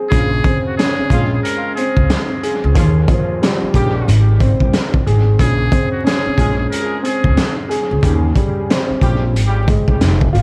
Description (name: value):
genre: hip hop, boom-bap hip-hop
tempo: 91 BPM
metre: 4/4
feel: swing 62% on 16ths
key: Bb minor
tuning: A4 = 443 Hz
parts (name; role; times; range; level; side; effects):
- dark baby grand piano; accompaniment; 0.0-10.4 s; Eb2 to Ab4; -23 LUFS; equal; cassette tape, high-pass filter, low-pass filter, dub echo
- trumpet with metal mute; melody; 0.1-7.5 s; Gb4 to Bb4; -27 LUFS; equal; high-pass filter, low-pass filter, dub echo
- mellow horn section; stabs; 0.1-9.2 s; Db3 to Ab4; -30 LUFS; equal; high-pass filter, low-pass filter, dub echo
- upright bass; bass; 0.1-10.4 s; F1 to Eb2; -17 LUFS; equal; none
- crunchy breakbeat drum kit; drums; 0.1-10.4 s; hi-hat, kick drum, snare drum; -19 LUFS; equal; none
room: studio reverb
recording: echo-heavy mix, vinyl crackle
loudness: -15 LUFS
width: mono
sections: 0.0-10.4 A section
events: none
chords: 0.1 Bbm9; 2.8 Eb13; 4.1 Ab; 5.4 Bbm9; 8.0 Eb13; 9.3 Ab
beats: | 0.12 0.78 1.44 2.10 | 2.76 3.42 4.07 4.73 | 5.39 6.05 6.71 7.37 | 8.03 8.69 9.35 10.01